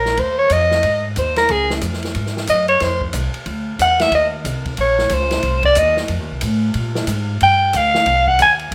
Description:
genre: jazz, small-group swing and bop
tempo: 183 BPM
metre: 4/4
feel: swing 63% on 8ths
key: unclear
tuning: A4 = 438 Hz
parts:
  - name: growling soprano saxophone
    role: melody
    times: 0.0-8.5 s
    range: Ab4 to Ab5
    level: -16 LUFS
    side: equal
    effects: plate reverb
  - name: upright bass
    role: bass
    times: 0.0-8.7 s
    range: Bb1 to Bb2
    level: -24 LUFS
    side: equal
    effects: none
  - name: open jazz drum kit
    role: drums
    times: 0.1-8.7 s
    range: hi-hat, kick drum, ride cymbal, snare drum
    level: -28 LUFS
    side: equal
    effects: none
room: moderate large studio reverb, RT60 0.8 s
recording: none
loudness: -17 LUFS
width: mono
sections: 0.0-8.7 A section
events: soprano saxophone solo 0.0-8.7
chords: 0.2 Ebsus2; 0.8 Ab5; 1.5 Db; 2.8 F5; 3.5 Dadd9; 4.1 Eb5; 5.4 Cmadd9; 6.1 F7; 6.7 Absus2; 7.4 G5; 8.1 Cm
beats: | 0.18 0.50 0.83 1.16 | 1.49 1.82 2.15 2.48 | 2.81 3.13 3.46 3.79 | 4.12 4.45 4.78 5.11 | 5.43 5.76 6.09 6.42 | 6.75 7.08 7.41 7.73 | 8.06 8.39 8.72

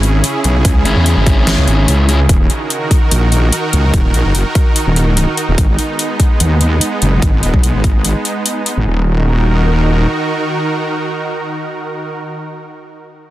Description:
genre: heavy wobble dubstep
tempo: 146 BPM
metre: 4/4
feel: half-time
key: Eb phrygian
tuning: A4 = 440 Hz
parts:
  - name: supersaw pad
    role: sustained chords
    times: 0.0-12.1 s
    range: Db3 to Bb4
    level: -18 LUFS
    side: right 1 dB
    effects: sidechain pumping
  - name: wobble bass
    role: bass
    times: 0.0-10.1 s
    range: Eb1 to Fb2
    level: -12 LUFS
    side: equal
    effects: chorus, overdrive
  - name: dubstep drum kit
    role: drums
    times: 0.0-8.7 s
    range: hi-hat, snare drum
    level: -18 LUFS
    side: left 2 dB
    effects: overdrive
  - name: electronic kick drum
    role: drums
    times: 0.6-7.9 s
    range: none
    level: -12 LUFS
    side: equal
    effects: overdrive
  - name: sludgy distorted guitar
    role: stabs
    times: 0.9-2.2 s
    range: Db4 to Ab4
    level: -20 LUFS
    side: left 2 dB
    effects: overdrive, vintage 12-bit sampler grit, dub echo
room: light reverb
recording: dense, heavily limited modern master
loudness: -11 LUFS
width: side -15 dB against mid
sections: 0.0-8.9 A section; 8.9-12.2 B section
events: none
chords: 0.0 Dbm; 2.3 Ebm; 5.6 Abm; 8.9 Ebm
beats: 0.24 | 0.65 1.06 1.47 1.88 | 2.29 2.70 3.11 3.52 | 3.94 4.35 4.76 5.17 | 5.58 5.99 6.40 6.81 | 7.22 7.63 8.04 8.46 | 8.87 9.28 9.69 10.10 | 10.51 10.92 11.33 11.74

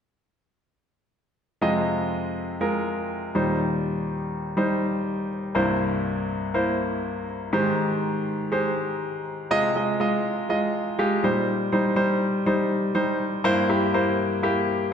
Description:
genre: pop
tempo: 122 BPM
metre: 4/4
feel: swing 56% on 16ths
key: F minor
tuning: A4 = 440 Hz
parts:
  - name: bright concert grand piano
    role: accompaniment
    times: 1.6-14.9 s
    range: C2 to Eb5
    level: -22 LUFS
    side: equal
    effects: none
room: wet scoring stage reverb, RT60 1.5 s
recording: none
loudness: -22 LUFS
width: side -7 dB against mid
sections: 1.6-9.5 A section; 9.5-14.9 B section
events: none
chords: 1.6 Fm7; 3.3 Eb6; 5.6 C7; 7.5 Abmaj7; 9.5 Fm7; 11.2 Eb6; 13.4 C7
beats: | 1.62 2.11 2.60 3.10 | 3.59 4.08 4.57 5.07 | 5.56 6.05 6.54 7.04 | 7.53 8.02 8.51 9.01 | 9.50 9.99 10.48 10.97 | 11.47 11.96 12.45 12.94 | 13.44 13.93 14.42 14.91

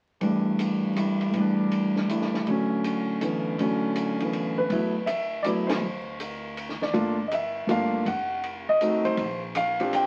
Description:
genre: jazz piano trio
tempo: 161 BPM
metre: 3/4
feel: swing 66% on 8ths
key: D major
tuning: A4 = 442 Hz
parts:
  - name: warm concert grand piano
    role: melody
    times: 0.2-10.1 s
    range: A2 to G5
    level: -26 LUFS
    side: equal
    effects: none
  - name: compact cocktail drum kit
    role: drums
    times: 0.2-10.0 s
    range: hi-hat, kick drum, ride cymbal, snare drum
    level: -37 LUFS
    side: equal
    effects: none
  - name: upright bass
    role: bass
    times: 4.7-10.1 s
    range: F1 to D2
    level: -41 LUFS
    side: equal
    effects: none
room: moderate studio reverb, RT60 0.6 s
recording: very old 78 rpm record, vinyl crackle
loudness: -26 LUFS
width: mono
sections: 0.2-4.7 A section; 4.7-10.1 B section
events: band accent 5.6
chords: 0.2 A7sus4; 2.5 Dmaj9/A; 4.7 D69; 6.9 Gm9; 8.1 F7b9; 9.2 Bb69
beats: | 0.21 0.59 0.96 | 1.33 1.71 2.08 | 2.46 2.83 3.21 | 3.58 3.95 4.33 | 4.70 5.08 5.45 | 5.82 6.20 6.57 | 6.94 7.32 7.69 | 8.06 8.44 8.81 | 9.18 9.56 9.93

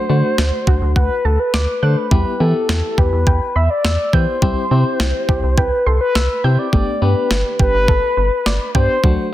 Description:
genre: synth-pop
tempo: 104 BPM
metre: 4/4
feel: straight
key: G major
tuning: A4 = 440 Hz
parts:
  - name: mellow horn-like synth lead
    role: melody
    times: 0.0-9.3 s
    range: A4 to E5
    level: -19 LUFS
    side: left 1 dB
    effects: chorus
  - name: FM electric piano with tremolo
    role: accompaniment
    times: 0.0-9.3 s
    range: A3 to A4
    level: -24 LUFS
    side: left 4 dB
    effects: none
  - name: soft round pluck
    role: arpeggios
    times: 0.1-9.2 s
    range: F#3 to G6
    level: -26 LUFS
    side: right 3 dB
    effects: chorus, digital delay
  - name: rubbery square bass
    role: bass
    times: 0.1-9.2 s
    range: G1 to E3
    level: -17 LUFS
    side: equal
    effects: none
  - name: clean 12-bit digital drum machine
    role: drums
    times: 0.4-9.2 s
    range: kick drum, snare drum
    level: -18 LUFS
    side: equal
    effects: none
room: light reverb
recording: dense, heavily limited modern master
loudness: -14 LUFS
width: side -14 dB against mid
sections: 0.0-9.3 A section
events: none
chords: 0.0 D; 2.1 Em; 4.4 C; 6.7 Gadd9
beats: 0.38 0.96 1.54 | 2.11 2.69 3.27 3.85 | 4.42 5.00 5.58 6.15 | 6.73 7.31 7.88 8.46 | 9.04

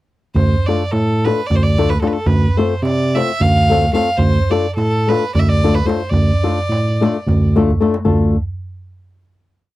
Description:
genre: balkan folk, Balkan wedding band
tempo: 218 BPM (eighths)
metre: 7/8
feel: straight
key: D minor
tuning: A4 = 442 Hz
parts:
  - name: barky tine electric piano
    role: bass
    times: 0.3-8.4 s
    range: D2 to C3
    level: -17 LUFS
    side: equal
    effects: overdrive
  - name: clear fiddle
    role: melody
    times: 0.4-7.6 s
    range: A4 to F5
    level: -20 LUFS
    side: right 1 dB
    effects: none
  - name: darbuka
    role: percussion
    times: 0.4-8.4 s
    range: none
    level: -19 LUFS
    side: right 2 dB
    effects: none
  - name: flamenco guitar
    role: accompaniment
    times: 0.7-8.4 s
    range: A3 to A4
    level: -16 LUFS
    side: left 4 dB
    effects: none
room: little or no reverb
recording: dry, close 1970s-style studio recording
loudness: -13 LUFS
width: side -16 dB against mid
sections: 0.4-8.1 A section; 8.1-9.8 final chord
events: drum fill 7.6-8.1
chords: 0.4 Dm; 2.3 F/D; 4.2 Dm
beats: | 0.36 0.63 0.91 1.18 1.45 1.73 2.00 | 2.27 2.55 2.82 3.10 3.37 3.65 3.92 | 4.20 4.47 4.75 5.02 5.30 5.57 5.85 | 6.12 6.40 6.67 6.95 7.23 7.50 7.78 | 8.06 8.33

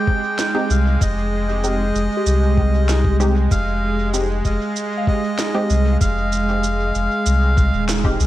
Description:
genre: ambient dub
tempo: 96 BPM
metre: 4/4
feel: straight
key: F dorian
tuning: A4 = 440 Hz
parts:
  - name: melodica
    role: melody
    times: 0.0-7.8 s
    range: Eb5 to G5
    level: -24 LUFS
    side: left 1 dB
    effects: dub echo
  - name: warm analog pad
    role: sustained chords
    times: 0.0-8.3 s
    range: Ab3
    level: -23 LUFS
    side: right 4 dB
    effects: chorus, tremolo
  - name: soft synth bell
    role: arpeggios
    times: 0.0-8.3 s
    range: G4 to D6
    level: -31 LUFS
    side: left 3 dB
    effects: chorus, phaser, dub echo
  - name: electronic kick drum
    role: drums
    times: 0.1-8.2 s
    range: none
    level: -19 LUFS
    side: equal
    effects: none
  - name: electronic snare drum and shaker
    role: drums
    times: 0.4-8.3 s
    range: none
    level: -28 LUFS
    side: right 1 dB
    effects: dub echo
  - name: filtered dub chord stab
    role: stabs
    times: 0.5-8.2 s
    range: Ab3 to G4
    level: -28 LUFS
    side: equal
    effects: chorus, cassette tape, dub echo
  - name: soft dub sub bass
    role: bass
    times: 0.7-8.3 s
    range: Eb1 to C2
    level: -18 LUFS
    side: equal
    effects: none
room: light reverb, digital ambience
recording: none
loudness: -16 LUFS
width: side -15 dB against mid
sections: 0.0-8.3 A section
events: band accent 7.9-8.2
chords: 0.0 Fm7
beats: 0.39 | 1.01 1.64 2.26 2.89 | 3.51 4.14 4.76 5.39 | 6.01 6.64 7.26 7.89

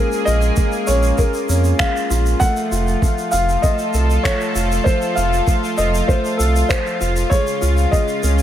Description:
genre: piano and strings electronica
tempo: 98 BPM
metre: 4/4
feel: straight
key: unclear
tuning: A4 = 440 Hz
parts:
  - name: felt-muted upright piano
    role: melody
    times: 0.0-8.4 s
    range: A4 to Gb5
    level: -22 LUFS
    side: equal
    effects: ping-pong delay
  - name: lush unison pad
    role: sustained chords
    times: 0.0-8.4 s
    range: Db3 to A4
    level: -24 LUFS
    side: equal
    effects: chorus
  - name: dark upright piano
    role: riff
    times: 0.0-8.4 s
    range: Ab3 to A4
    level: -23 LUFS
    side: left 2 dB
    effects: ping-pong delay
  - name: shaker and finger snaps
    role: drums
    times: 0.1-8.4 s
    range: none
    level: -27 LUFS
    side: equal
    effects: none
  - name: round analog bass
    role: bass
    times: 0.3-8.4 s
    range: F1 to F2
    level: -17 LUFS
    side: right 1 dB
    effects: sidechain pumping
  - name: electronic kick drum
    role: drums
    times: 0.6-8.0 s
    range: none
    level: -18 LUFS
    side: right 1 dB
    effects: overdrive
room: small room ambience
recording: none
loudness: -15 LUFS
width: side -11 dB against mid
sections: 0.0-8.4 A section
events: none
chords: 0.0 Bbm7; 2.4 F; 7.3 Db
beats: 0.58 1.19 1.80 | 2.42 3.03 3.64 4.25 | 4.86 5.48 6.09 6.70 | 7.31 7.92

